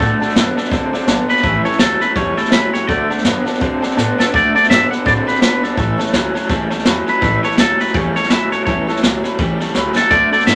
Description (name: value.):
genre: rockabilly.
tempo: 166 BPM.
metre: 4/4.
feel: swing 59% on 8ths.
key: unclear.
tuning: A4 = 441 Hz.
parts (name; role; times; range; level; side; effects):
twangy electric guitar; melody; 0.0-10.6 s; A4 to F#5; -18 LUFS; equal; spring reverb.
bright upright piano; accompaniment; 0.0-10.6 s; C#5 to B5; -29 LUFS; equal; none.
picked steel-string acoustic guitar; accompaniment; 0.0-10.6 s; A2 to A4; -28 LUFS; equal; none.
electric guitar through a small old amp; riff; 0.0-10.6 s; A2 to C4; -22 LUFS; equal; tremolo.
upright bass; bass; 0.0-10.6 s; A1 to A2; -29 LUFS; equal; none.
jazz brush drum kit; drums; 0.0-10.6 s; hi-hat, kick drum, snare drum; -20 LUFS; equal; none.
room: moderate club reverb, RT60 0.7 s.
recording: none.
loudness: -15 LUFS.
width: mono.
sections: 0.0-4.3 A section; 4.3-10.6 A section.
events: drum fill 4.0-4.3, 9.8-10.1.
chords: 0.0 D; 1.4 A7; 2.9 D; 5.8 A7.